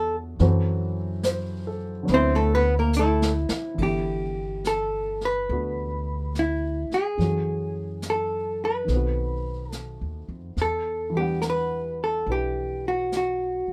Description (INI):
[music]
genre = jazz ballad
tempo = 71 BPM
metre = 4/4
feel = swing 66% on 8ths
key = G major from 3.8 s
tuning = A4 = 438 Hz
[part]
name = vintage hollow-body jazz guitar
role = melody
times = 0.0-13.7 s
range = A3 to C5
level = -28 LUFS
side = equal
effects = none
[part]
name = warm baby grand piano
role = accompaniment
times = 0.0-13.7 s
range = D3 to F#5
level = -31 LUFS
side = equal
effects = none
[part]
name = upright bass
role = bass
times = 0.0-13.7 s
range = G1 to F#2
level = -31 LUFS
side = equal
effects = none
[part]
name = vintage brush drum kit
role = drums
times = 0.4-13.7 s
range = brushed snare drum, hi-hat, kick drum, ride cymbal, snare drum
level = -36 LUFS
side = equal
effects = none
[sound]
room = little or no reverb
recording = none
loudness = -25 LUFS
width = mono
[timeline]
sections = 0.0-3.8 A section; 3.8-13.7 B section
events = hollow-body jazz guitar solo 0.0-3.8; drum fill 2.9-3.8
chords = 0.4 F#m7b5; 2.1 D13; 3.8 G69; 7.2 F#m9; 8.9 B7b9; 10.6 Em9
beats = | 0.40 1.24 2.08 2.93 | 3.78 4.63 5.48 6.33 | 7.18 8.03 8.87 9.72 | 10.57 11.42 12.26 13.11